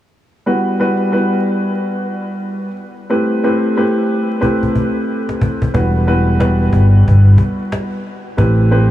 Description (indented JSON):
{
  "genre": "hip hop, boom-bap hip-hop",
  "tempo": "91 BPM",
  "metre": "4/4",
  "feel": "swing 62% on 16ths",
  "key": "E minor",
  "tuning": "A4 = 442 Hz",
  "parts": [
    { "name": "dark baby grand piano", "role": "accompaniment", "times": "0.5-8.9 s", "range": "G3 to B4", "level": "-16 LUFS", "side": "equal", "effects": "cassette tape, high-pass filter, low-pass filter" },
    { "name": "cajon", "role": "drums", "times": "4.4-8.8 s", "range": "none", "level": "-19 LUFS", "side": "equal", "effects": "none" },
    { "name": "fingered electric bass", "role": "bass", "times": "5.7-8.9 s", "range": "E1 to A1", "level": "-10 LUFS", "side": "equal", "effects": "none" }
  ],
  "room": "light reverb",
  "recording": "vinyl crackle, small room ambience",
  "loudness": "-12 LUFS",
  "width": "side -13 dB against mid",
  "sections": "0.5-5.7 A section; 5.7-8.9 B section",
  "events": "drum fill 4.4-5.7",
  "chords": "0.5 Emadd9; 3.1 Am7; 5.7 Emadd9; 8.4 Am7",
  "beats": "| 0.47 1.13 1.79 2.45 | 3.11 3.77 4.42 5.08 | 5.74 6.40 7.06 7.72 | 8.38"
}